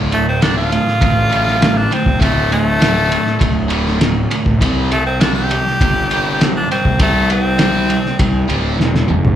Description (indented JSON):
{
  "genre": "classic rock",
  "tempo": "100 BPM",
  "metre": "4/4",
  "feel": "straight",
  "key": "unclear",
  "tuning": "A4 = 437 Hz",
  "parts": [
    { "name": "tight distorted guitar", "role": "riff", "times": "0.0-9.4 s", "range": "D2 to C4", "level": "-19 LUFS", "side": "right 1 dB", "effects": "distortion" },
    { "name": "fuzz picked electric bass", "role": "bass", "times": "0.0-9.4 s", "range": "D1 to C2", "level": "-18 LUFS", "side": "equal", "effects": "overdrive" },
    { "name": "raspy tenor saxophone", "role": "melody", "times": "0.1-8.5 s", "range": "A3 to G4", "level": "-18 LUFS", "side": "equal", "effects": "plate reverb, slapback echo" },
    { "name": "cloth-damped thuddy drum kit", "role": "drums", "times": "0.1-9.4 s", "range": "kick drum, ride cymbal, snare drum, toms", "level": "-17 LUFS", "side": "equal", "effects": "none" }
  ],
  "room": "light reverb",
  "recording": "live gig heard through the venue's PA, club reverb",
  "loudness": "-12 LUFS",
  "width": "side -10 dB against mid",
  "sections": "0.0-9.4 A section",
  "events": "tenor saxophone solo 0.0-9.4; drum fill 8.8-9.4",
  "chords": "0.0 D5; 4.6 C5",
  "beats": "0.42 1.02 1.62 | 2.22 2.82 3.42 4.02 | 4.62 5.21 5.81 6.41 | 7.00 7.60 8.20 8.79"
}